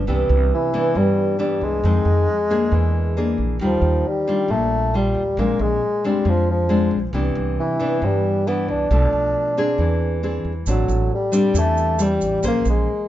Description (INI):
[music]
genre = bossa nova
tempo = 136 BPM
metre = 4/4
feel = straight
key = unclear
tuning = A4 = 440 Hz
[part]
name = nylon-string guitar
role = accompaniment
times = 0.0-13.1 s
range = F2 to C5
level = -22 LUFS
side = left 1 dB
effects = none
[part]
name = upright bass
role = bass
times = 0.0-12.9 s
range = A1 to G2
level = -21 LUFS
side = right 1 dB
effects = none
[part]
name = dark bassoon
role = melody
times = 0.5-13.1 s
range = E3 to D4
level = -21 LUFS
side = left 1 dB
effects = none
[part]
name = tube shaker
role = percussion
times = 10.7-12.9 s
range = none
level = -34 LUFS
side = right 8 dB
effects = none
[sound]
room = light reverb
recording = dark, warm production, nothing above 7.8 kHz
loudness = -17 LUFS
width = side -13 dB against mid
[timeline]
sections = 0.0-13.1 A section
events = none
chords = 0.1 Cmaj9; 1.8 Fm7; 2.7 E7#11; 3.6 Ebmaj9; 5.4 Bb9; 7.1 Cmaj9; 8.9 Bm7b5; 9.8 Eaug7; 10.7 Am7; 12.4 Bbm9